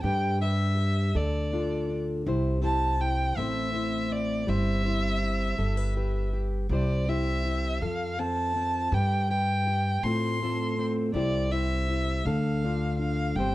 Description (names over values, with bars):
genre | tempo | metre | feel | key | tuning
acoustic folk duo or small band | 54 BPM (dotted quarters) | 6/8 | straight | C major | A4 = 440 Hz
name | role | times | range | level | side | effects
dark violin | melody | 0.0-13.5 s | D5 to C6 | -30 LUFS | equal | plate reverb
fingerpicked plugged-in steel-string acoustic guitar | accompaniment | 0.0-13.5 s | A2 to C5 | -30 LUFS | left 1 dB | none
upright bass | bass | 0.0-13.5 s | G1 to A2 | -29 LUFS | equal | none
room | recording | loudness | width
moderate studio reverb, RT60 0.5 s | dark, warm production | -25 LUFS | side -16 dB against mid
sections
0.0-13.5 A section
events
none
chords
0.0 G; 1.1 Dm; 2.3 C; 3.4 Am; 4.5 C/G; 5.6 G; 6.7 C; 7.8 F; 8.9 G; 10.0 F/A; 11.1 C; 12.2 Dm